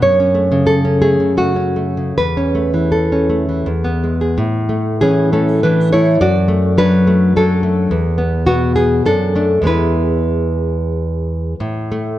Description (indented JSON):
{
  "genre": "romantic piece for solo classical guitar",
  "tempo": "72-110 BPM",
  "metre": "3/4",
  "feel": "rubato",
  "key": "A major",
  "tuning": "A4 = 437 Hz",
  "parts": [
    { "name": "nylon-string guitar", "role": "solo", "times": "0.0-12.2 s", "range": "E2 to D5", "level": "-13 LUFS", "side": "equal", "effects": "none" }
  ],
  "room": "moderate concert hall reverb, RT60 1.9 s",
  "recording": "dark, warm production",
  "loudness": "-13 LUFS",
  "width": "side -14 dB against mid",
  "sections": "0.0-4.4 A section; 4.4-12.2 B section",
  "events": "none",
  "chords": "0.0 F#m; 2.2 A/E; 3.7 E; 4.4 A; 6.2 D/F#; 7.9 E5; 9.1 D/F#; 9.7 E; 11.6 N.C."
}